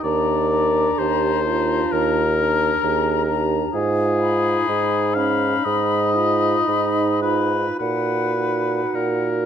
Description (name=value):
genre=classical, slow romantic movement for wind quintet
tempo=51-67 BPM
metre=4/4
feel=rubato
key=unclear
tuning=A4 = 440 Hz
part: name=silver concert flute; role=melody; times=0.0-9.3 s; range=Gb5 to Cb6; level=-27 LUFS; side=left 10 dB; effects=none
part: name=warm oboe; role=second line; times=0.0-9.5 s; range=Ab4 to F5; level=-23 LUFS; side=left 5 dB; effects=none
part: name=clear clarinet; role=accompaniment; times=0.0-9.5 s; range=D4 to Eb4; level=-28 LUFS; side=right 9 dB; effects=none
part: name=mellow French horn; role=accompaniment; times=0.0-9.5 s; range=Db4 to Bb4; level=-25 LUFS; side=equal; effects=none
part: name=dark bassoon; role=bass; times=0.0-9.5 s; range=Eb2 to Bb2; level=-22 LUFS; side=right 3 dB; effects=none
room=light reverb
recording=none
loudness=-17 LUFS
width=side -8 dB against mid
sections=0.0-9.5 A section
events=none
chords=0.0 Bb/Eb; 3.7 Fm7b5/Ab; 7.8 Ebm/Bb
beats=| 0.04 0.99 1.92 2.83 | 3.74 4.69 5.66 6.69 | 7.80 8.95